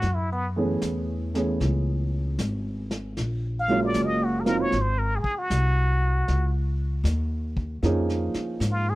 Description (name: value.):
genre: jazz ballad.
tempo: 77 BPM.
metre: 4/4.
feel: swing 67% on 8ths.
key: unclear.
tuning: A4 = 438 Hz.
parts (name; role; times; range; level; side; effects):
trumpet with plunger mute; melody; 0.0-8.9 s; B3 to E#5; -27 LUFS; equal; none.
upright bass; bass; 0.0-8.9 s; F#1 to G#2; -25 LUFS; equal; none.
vintage brush drum kit; drums; 0.0-8.9 s; brushed snare drum, hi-hat, kick drum, snare drum; -33 LUFS; equal; none.
dark grand piano; accompaniment; 0.6-8.9 s; E3 to G#4; -26 LUFS; right 2 dB; none.
room: small room reverb.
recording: none.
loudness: -23 LUFS.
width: side -18 dB against mid.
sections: 0.0-8.9 A section.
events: muted trumpet solo 0.0-8.9.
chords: 0.0 F#m11; 3.2 D#m11; 4.7 G#7; 6.3 C#6.